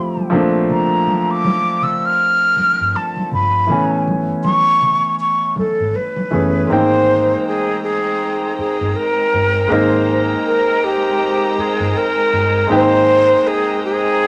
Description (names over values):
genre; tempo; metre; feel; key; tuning
R&B, neo-soul; 80 BPM; 4/4; swing 58% on 16ths; unclear; A4 = 440 Hz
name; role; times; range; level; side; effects
breathy mellow silver concert flute; melody; 0.0-14.3 s; G4 to F6; -18 LUFS; equal; none
warm grand piano; accompaniment; 0.0-14.3 s; E3 to G#5; -21 LUFS; equal; none
congas; percussion; 0.2-6.5 s; none; -27 LUFS; equal; none
vintage muted fingered electric bass; bass; 0.3-13.3 s; F#1 to Bb1; -26 LUFS; equal; none
rich studio string section; sustained chords; 6.7-14.3 s; Ab3 to Bb5; -26 LUFS; equal; none
room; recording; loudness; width
wet studio reverb, RT60 0.6 s; none; -16 LUFS; mono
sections
0.0-6.7 A section; 6.7-14.3 B section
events
none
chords
0.3 Bbmaj9; 3.7 Amaj9; 6.7 Abmaj9